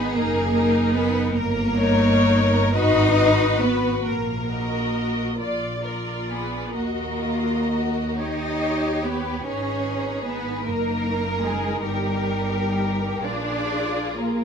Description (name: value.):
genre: classical, slow romantic movement for string orchestra.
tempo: 40-52 BPM (dotted quarters).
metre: 6/8.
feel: rubato.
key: unclear.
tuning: A4 = 441 Hz.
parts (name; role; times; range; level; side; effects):
rich studio violin section; melody; 0.0-14.4 s; F4 to D5; -31 LUFS; left 4 dB; none.
warm studio violin section; second line; 0.0-14.4 s; G4 to Eb5; -28 LUFS; equal; none.
rich studio viola section; accompaniment; 0.0-14.4 s; Eb4 to Eb5; -27 LUFS; left 2 dB; none.
rich studio cello section; bass; 0.0-14.4 s; G3 to Eb4; -24 LUFS; equal; none.
warm studio double bass section; bass; 0.1-14.4 s; Gb1 to Eb2; -27 LUFS; right 2 dB; none.
room: moderate studio reverb, RT60 0.7 s.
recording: minimal, uncompressed stereo recording.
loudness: -20 LUFS.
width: side -7 dB against mid.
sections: 0.0-14.4 A section.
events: none.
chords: 0.2 Ebm/Gb; 1.3 Eb7/G; 2.7 Abm7; 4.0 Ebm/Bb; 5.4 Bb; 6.7 Ebm; 8.2 Eb7; 9.4 Abm; 10.6 Ebm/Gb; 11.8 Eb/G; 13.2 Bb7.